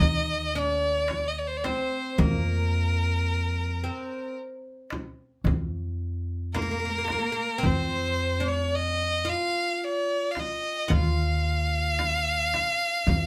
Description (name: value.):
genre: Turkish makam ensemble.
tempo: 110 BPM (eighths).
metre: 10/8.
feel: straight.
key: F makam hicaz.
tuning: A4 = 438 Hz.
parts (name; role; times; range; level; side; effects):
clear violin; melody; 0.0-13.3 s; Bb4 to Gb5; -30 LUFS; equal; none.
oud; second line; 0.0-13.3 s; Bb3 to F4; -37 LUFS; equal; none.
upright bass; bass; 0.0-13.3 s; Eb2 to F2; -30 LUFS; equal; none.
frame drum; percussion; 0.0-13.3 s; none; -32 LUFS; equal; none.
darbuka; percussion; 1.1-13.3 s; none; -32 LUFS; equal; none.
room: wet studio ambience, RT60 0.5 s.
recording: band playing live in one room.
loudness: -27 LUFS.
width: mono.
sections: 0.0-13.3 A section.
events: none.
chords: none.